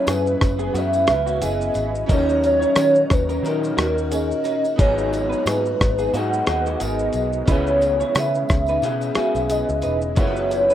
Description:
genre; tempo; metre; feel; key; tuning
indie pop, bedroom pop; 89 BPM; 4/4; swing 55% on 16ths; C# dorian; A4 = 444 Hz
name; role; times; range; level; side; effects
hollow clarinet-like synth lead; melody; 0.0-10.7 s; A#4 to F#5; -21 LUFS; equal; ensemble chorus, tape echo
electric guitar through a small old amp; second line; 0.0-10.7 s; A#3 to C#5; -29 LUFS; right 3 dB; analog chorus, tape echo
chorused retro synth keys; accompaniment; 0.0-10.7 s; B3 to A#5; -34 LUFS; right 2 dB; none
electric guitar through a small old amp; accompaniment; 0.0-10.7 s; F#2 to A#4; -26 LUFS; left 2 dB; lush chorus, warbly pitch drift
phased string machine; sustained chords; 0.0-10.7 s; A#2 to B4; -34 LUFS; equal; ensemble chorus, phaser
vintage muted picked electric bass; bass; 0.1-10.7 s; E1 to D#3; -26 LUFS; equal; none
dusty soul sampler-style drum kit; drums; 0.1-10.7 s; hi-hat, kick drum, rim click, shaker; -20 LUFS; equal; vintage 12-bit sampler grit
tambourine; percussion; 0.1-10.7 s; none; -44 LUFS; left 2 dB; none
room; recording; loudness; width
moderate small room reverb, RT60 0.5 s; rough home demo mix; -18 LUFS; side -11 dB against mid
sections
0.0-10.7 A section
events
none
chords
0.0 F#7sus4; 2.1 D#m7; 4.8 G#m7; 7.5 C#m7; 10.2 F#7sus4

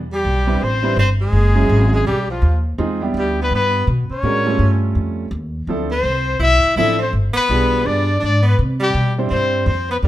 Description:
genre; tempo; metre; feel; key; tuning
jazz; 166 BPM; 4/4; swing 64% on 8ths; C major; A4 = 440 Hz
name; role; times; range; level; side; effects
upright bass; bass; 0.0-10.1 s; F#1 to C3; -18 LUFS; equal; none
warm trumpet; melody; 0.1-10.0 s; F4 to E5; -20 LUFS; left 3 dB; none
bright tenor saxophone; second line; 0.1-10.1 s; F3 to E4; -23 LUFS; right 2 dB; none
clear grand piano; accompaniment; 0.5-10.1 s; F3 to C5; -22 LUFS; right 2 dB; none
room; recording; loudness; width
light reverb; minimal, uncompressed stereo recording; -15 LUFS; side -14 dB against mid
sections
0.0-10.1 A section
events
none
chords
0.0 Cmaj7; 1.3 F#sus2; 2.1 Gaug7/B; 2.8 Em7; 4.2 Aaug7; 5.7 Dm9; 7.1 G7b9; 8.6 Cmaj7

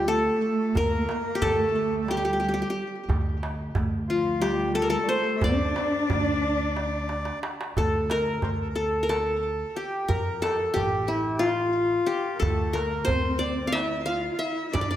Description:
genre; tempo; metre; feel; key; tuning
Turkish makam ensemble; 180 BPM (eighths); 7/8; straight; D makam ussak; A4 = 439 Hz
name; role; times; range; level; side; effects
qanun; melody; 0.0-15.0 s; E4-30c to F5; -26 LUFS; left 1 dB; tape echo
accordion; second line; 0.0-15.0 s; E4-30c to F5; -32 LUFS; left 1 dB; none
warm studio cello section; second line; 0.0-7.4, 12.4-15.0 s; F3 to F4; -29 LUFS; equal; none
upright bass; bass; 0.0-15.0 s; A1 to F2; -30 LUFS; equal; none
darbuka; percussion; 0.8-14.9 s; none; -32 LUFS; right 2 dB; none
room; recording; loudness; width
wet recital hall reverb, RT60 1.7 s; none; -23 LUFS; side -12 dB against mid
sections
0.0-7.8 A section; 7.8-15.0 B section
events
drum fill 7.1-7.8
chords
none

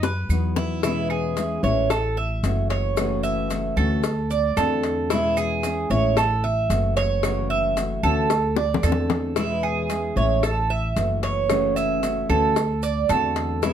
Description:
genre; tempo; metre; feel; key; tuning
latin, Cuban son and guajira; 113 BPM; 4/4; straight; E major; A4 = 441 Hz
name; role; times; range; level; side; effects
Cuban tres; arpeggios; 0.0-13.7 s; E4 to E5; -24 LUFS; right 5 dB; none
upright bass; bass; 0.0-13.7 s; F#1 to F#2; -25 LUFS; equal; none
bongos and cowbell; percussion; 0.0-13.7 s; none; -27 LUFS; left 8 dB; none
maracas; percussion; 0.0-13.7 s; none; -40 LUFS; right 6 dB; none
nylon-string guitar; accompaniment; 0.3-13.7 s; B2 to F#4; -26 LUFS; left 4 dB; none
claves; percussion; 0.3-13.4 s; none; -35 LUFS; right 6 dB; none
room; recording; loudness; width
moderate studio reverb, RT60 0.6 s; none; -20 LUFS; side -9 dB against mid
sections
0.8-13.7 A section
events
drum fill 0.0-0.8, 8.6-9.4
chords
0.0 B; 0.8 E6; 1.9 A6; 3.0 F#m7; 4.0 D7; 5.1 E6; 6.2 A6; 7.2 F#m7; 8.3 D7; 9.4 E6; 10.4 A6; 11.5 F#m7; 12.6 D7

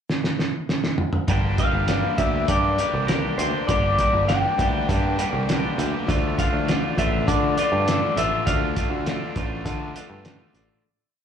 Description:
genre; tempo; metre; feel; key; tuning
indie rock; 100 BPM; 4/4; straight; G minor; A4 = 440 Hz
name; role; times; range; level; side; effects
cloth-damped thuddy drum kit; drums; 0.1-10.7 s; hi-hat, kick drum, snare drum, toms; -25 LUFS; right 1 dB; none
overdriven semi-hollow guitar; riff; 1.3-10.8 s; F3 to D4; -29 LUFS; left 8 dB; slapback echo
twangy electric guitar; riff; 1.3-10.8 s; G2 to G4; -29 LUFS; right 7 dB; lush chorus, slapback echo, analog delay
picked electric bass; bass; 1.3-10.7 s; G1 to D3; -25 LUFS; equal; none
electric guitar through a small old amp; melody; 1.6-10.5 s; Bb4 to G5; -24 LUFS; left 1 dB; lush chorus, slapback echo, analog delay
room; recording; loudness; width
light reverb; live gig heard through the venue's PA, club reverb; -20 LUFS; side -8 dB against mid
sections
0.0-1.3 pickup bar; 1.3-10.8 verse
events
drum fill 0.1-1.3; fade-out 8.5-10.8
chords
0.0 N.C.; 1.3 Gm; 6.1 Dm

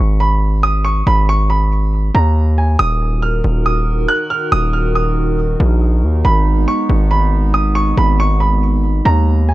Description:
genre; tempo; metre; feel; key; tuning
hip hop; 139 BPM; 4/4; half-time; unclear; A4 = 437 Hz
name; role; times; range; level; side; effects
warm concert grand piano; melody; 0.0-9.5 s; Ab5 to Gb6; -18 LUFS; right 2 dB; low-pass filter, digital delay
distorted 808-style bass; bass; 0.0-9.5 s; Eb1 to Eb2; -14 LUFS; equal; distortion
hollow soft pad; sustained chords; 3.0-9.5 s; Eb3 to Bb4; -21 LUFS; right 1 dB; chorus
room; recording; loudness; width
studio ambience; dark, warm production; -12 LUFS; side -17 dB against mid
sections
0.0-9.5 A section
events
none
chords
0.0 Abm; 2.8 Ebm; 6.2 Abm

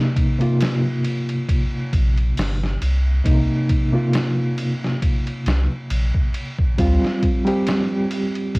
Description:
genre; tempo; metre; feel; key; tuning
trip hop; 68 BPM; 4/4; swing 55% on 16ths; C minor; A4 = 440 Hz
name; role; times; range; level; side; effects
reed electric piano; accompaniment; 0.0-8.6 s; C3 to G4; -21 LUFS; equal; fast tremolo, vintage 12-bit sampler grit, tape echo, plate reverb
trip hop sampler-style drum kit; drums; 0.2-8.6 s; hi-hat, kick drum, ride cymbal, snare drum; -22 LUFS; equal; cassette tape
warm sub bass; bass; 1.9-7.0 s; G1 to D2; -19 LUFS; equal; tube saturation
room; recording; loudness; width
light reverb; home recording on cassette, vinyl crackle; -18 LUFS; side -27 dB against mid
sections
0.0-8.6 A section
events
none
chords
0.0 Cm7; 6.8 G7sus4

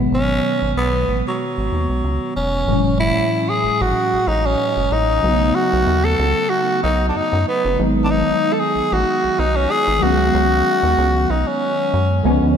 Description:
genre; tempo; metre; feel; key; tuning
R&B, neo-soul; 94 BPM; 4/4; swing 54% on 16ths; F# dorian; A4 = 444 Hz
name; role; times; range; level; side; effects
tine electric piano; accompaniment; 0.0-12.6 s; G#2 to D#4; -21 LUFS; equal; ensemble chorus
rubbery square bass; bass; 0.0-12.6 s; E1 to F#2; -21 LUFS; equal; none
growling tenor saxophone; melody; 0.1-12.3 s; F#3 to A4; -18 LUFS; equal; ping-pong delay
room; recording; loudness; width
moderate lush hall reverb, RT60 3.3 s; dreamy mix soaked in reverb; -15 LUFS; side -8 dB against mid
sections
0.0-2.7 A section; 2.7-12.6 B section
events
none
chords
0.0 G#m7; 2.7 F#m9; 5.2 B9; 7.8 G#m7; 10.0 C#7sus4

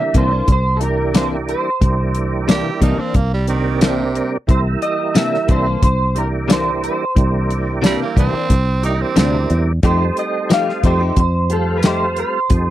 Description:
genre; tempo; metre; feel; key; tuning
straight-eighth soul blues; 90 BPM; 4/4; straight; C mixolydian; A4 = 436 Hz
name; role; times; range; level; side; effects
electric guitar through a small old amp; melody; 0.0-12.7 s; A4 to F5; -20 LUFS; right 1 dB; analog chorus, slapback echo
tonewheel organ; accompaniment; 0.0-12.7 s; C3 to F4; -22 LUFS; right 4 dB; slow rotary speaker, chorus vibrato
direct-recorded clean electric guitar; stabs; 0.0-12.1 s; C3 to G4; -20 LUFS; left 3 dB; analog chorus
fingered electric bass; bass; 0.1-12.7 s; C2 to F2; -18 LUFS; equal; none
damped 70s drum kit; drums; 0.1-12.7 s; hi-hat, kick drum, snare drum, tambourine; -15 LUFS; equal; none
growling tenor saxophone; second line; 2.5-9.7 s; C3 to G4; -22 LUFS; right 5 dB; none
room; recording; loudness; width
little or no reverb; dry, close 1970s-style studio recording; -14 LUFS; side -14 dB against mid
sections
0.0-12.7 A section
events
none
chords
0.0 C9; 9.8 F9

